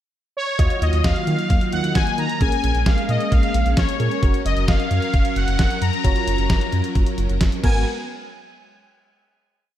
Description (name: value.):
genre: synth-pop.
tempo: 132 BPM.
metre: 4/4.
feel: straight.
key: unclear.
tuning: A4 = 440 Hz.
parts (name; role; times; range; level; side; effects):
analog synth brass; melody; 0.4-7.8 s; C#5 to A#5; -25 LUFS; left 2 dB; chorus, diffuse ambient delay.
warm analog keys; accompaniment; 0.6-7.8 s; B3 to D#5; -29 LUFS; right 1 dB; chorus.
string machine, violins; sustained chords; 0.6-7.8 s; D#3 to E#5; -27 LUFS; equal; ensemble chorus.
smooth synth bass; bass; 0.6-7.8 s; F#1 to D#3; -22 LUFS; equal; none.
detuned 8-bit digital drum machine; drums; 0.6-7.7 s; crash cymbal, hi-hat, kick drum, snare drum; -20 LUFS; equal; none.
room: moderate plate reverb, RT60 1.1 s, digital ambience.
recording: dreamy mix soaked in reverb.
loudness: -17 LUFS.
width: side -12 dB against mid.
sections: 0.0-0.6 pickup bar; 0.6-7.9 verse; 7.9-9.7 final hit.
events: none.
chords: 0.0 N.C.; 0.6 D#madd9; 2.4 A#m7; 4.2 F#maj7; 7.6 G#m9; 7.9 N.C..